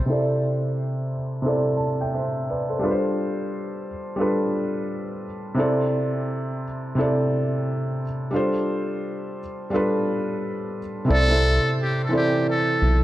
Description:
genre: lo-fi hip hop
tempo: 87 BPM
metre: 4/4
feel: swing 64% on 16ths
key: C major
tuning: A4 = 440 Hz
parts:
  - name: felt-muted upright piano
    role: accompaniment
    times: 0.0-13.0 s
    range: C3 to A5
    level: -22 LUFS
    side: equal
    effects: low-pass filter
  - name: trumpet with metal mute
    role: melody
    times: 11.1-13.0 s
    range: G4 to A4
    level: -24 LUFS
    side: left 1 dB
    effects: none
  - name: round analog bass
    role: bass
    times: 11.1-13.0 s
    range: B1 to C2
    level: -19 LUFS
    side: equal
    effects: none
room: moderate plate reverb, RT60 3.0 s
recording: none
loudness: -21 LUFS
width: side -15 dB against mid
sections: 0.1-11.1 A section; 11.1-13.0 B section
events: filter sweep on felt piano 0.1-11.1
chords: 0.1 C6; 2.8 G9sus4; 5.6 C6; 8.3 G9sus4; 11.1 C6

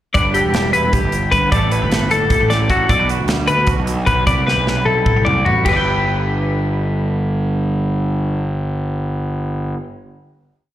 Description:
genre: math rock and midwest emo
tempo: 304 BPM (eighths)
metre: 7/8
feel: straight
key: G major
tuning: A4 = 440 Hz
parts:
  - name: twangy electric guitar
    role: accompaniment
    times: 0.1-9.9 s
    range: G2 to B4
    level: -25 LUFS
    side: right 10 dB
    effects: ensemble chorus, slapback echo
  - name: twelve-string electric guitar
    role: arpeggios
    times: 0.1-9.8 s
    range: F#4 to G5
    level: -17 LUFS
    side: left 3 dB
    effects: slapback echo
  - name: modern studio drum kit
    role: drums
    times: 0.1-5.7 s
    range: crash cymbal, hi-hat, kick drum, snare drum, toms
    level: -20 LUFS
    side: equal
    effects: none
  - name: fuzz picked electric bass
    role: bass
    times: 0.2-9.7 s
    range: E1 to D2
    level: -19 LUFS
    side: equal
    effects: overdrive
room: little or no reverb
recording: live gig heard through the venue's PA, recital hall reverb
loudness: -14 LUFS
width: side -12 dB against mid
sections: 0.1-5.7 A section; 5.7-8.4 final chord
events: drum fill 4.5-5.7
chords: 0.1 G69; 1.5 A7sus4; 2.9 Gmaj7/B; 4.3 Cmaj9; 5.7 G69

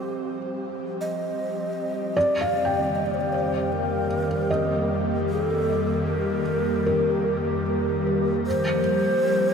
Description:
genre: ambient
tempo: 76 BPM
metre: 4/4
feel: straight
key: unclear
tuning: A4 = 441 Hz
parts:
  - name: breathy mellow long shakuhachi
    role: melody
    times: 0.0-9.5 s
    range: G4 to Eb5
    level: -27 LUFS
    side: equal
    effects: shimmer reverb, ping-pong delay
  - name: airy breathy pad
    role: sustained chords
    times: 0.0-9.5 s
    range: F2 to C5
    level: -25 LUFS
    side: equal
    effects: chorus, shimmer reverb
  - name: felt-muted upright piano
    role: arpeggios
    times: 0.0-9.5 s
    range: Bb4 to G5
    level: -27 LUFS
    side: left 1 dB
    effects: shimmer reverb, ping-pong delay
room: wet huge ambient reverb, RT60 7.4 s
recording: none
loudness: -22 LUFS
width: side -6 dB against mid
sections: 0.0-9.5 A section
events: fade-in on analog synth pad 0.0-9.5; fade-in on shakuhachi 0.0-9.5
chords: 0.0 Fsus2; 2.2 Eb/F; 8.5 Fsus2

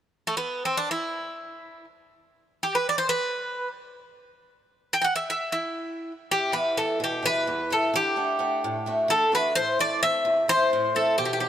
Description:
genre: greek folk, Greek bouzouki band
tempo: free time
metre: none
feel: none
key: E minor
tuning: A4 = 440 Hz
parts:
  - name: Greek bouzouki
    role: melody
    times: 0.3-11.5 s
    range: A3 to G5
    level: -24 LUFS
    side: equal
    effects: none
  - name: picked swing-style acoustic guitar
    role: accompaniment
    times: 6.3-11.5 s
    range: E2 to F#5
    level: -27 LUFS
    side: equal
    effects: none
room: light reverb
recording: none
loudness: -23 LUFS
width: side -10 dB against mid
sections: 0.0-6.3 A section; 6.3-11.5 B section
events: none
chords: 0.0 N.C.; 6.3 Em; 7.9 D; 9.6 Am

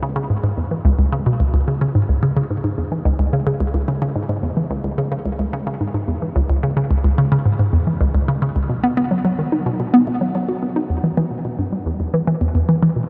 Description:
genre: ambient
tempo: 109 BPM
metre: 4/4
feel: straight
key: unclear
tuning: A4 = 441 Hz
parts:
  - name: hollow square pluck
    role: solo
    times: 0.0-13.0 s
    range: C#2 to F#4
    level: -19 LUFS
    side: equal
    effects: chorus, phaser, tape echo
room: wet huge ambient reverb, RT60 7.0 s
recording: dark, warm production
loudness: -19 LUFS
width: mono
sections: 0.0-10.9 A section; 10.9-13.1 B section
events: none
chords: none

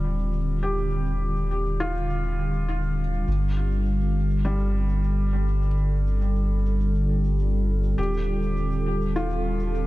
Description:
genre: ambient dub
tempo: 102 BPM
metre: 4/4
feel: straight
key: unclear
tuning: A4 = 442 Hz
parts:
  - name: warm analog pad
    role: sustained chords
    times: 0.0-9.9 s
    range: D3 to A4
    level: -28 LUFS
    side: equal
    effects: chorus
  - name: felt-muted upright piano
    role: arpeggios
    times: 0.0-9.9 s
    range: G3 to G4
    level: -32 LUFS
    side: left 1 dB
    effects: tape echo
  - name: soft dub sub bass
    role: bass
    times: 0.0-9.9 s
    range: Eb1 to G1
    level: -24 LUFS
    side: equal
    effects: none
  - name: cabasa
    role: drums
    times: 0.2-9.9 s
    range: none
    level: -63 LUFS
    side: right 2 dB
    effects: low-pass filter on perc, studio reverb, low-pass filter on room, dub echo
room: studio ambience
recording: none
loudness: -22 LUFS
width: side -18 dB against mid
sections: 0.0-9.9 A section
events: filter sweep on analog synth pad 0.0-9.9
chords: 0.0 Ebmaj7; 3.3 G5; 8.0 Ebmaj7

